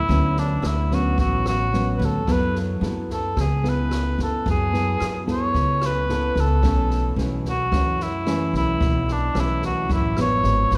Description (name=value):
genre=bossa nova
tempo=110 BPM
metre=4/4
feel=straight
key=unclear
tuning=A4 = 440 Hz
part: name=mellow cor anglais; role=melody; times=0.0-10.8 s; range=D4 to C#5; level=-27 LUFS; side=equal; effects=none
part: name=nylon-string guitar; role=accompaniment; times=0.0-10.8 s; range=F#2 to A4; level=-28 LUFS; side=equal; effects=none
part: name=upright bass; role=bass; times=0.0-10.8 s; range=G#1 to F#2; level=-26 LUFS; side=equal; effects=none
part: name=open jazz drum kit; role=drums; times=0.1-10.8 s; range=kick drum, rim click, snare drum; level=-31 LUFS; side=equal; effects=none
room=moderate church reverb, RT60 3.6 s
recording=recorded in a church or concert hall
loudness=-22 LUFS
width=mono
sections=0.0-10.8 A section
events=none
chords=0.0 Dmaj13; 2.3 F#m11; 6.6 B9sus4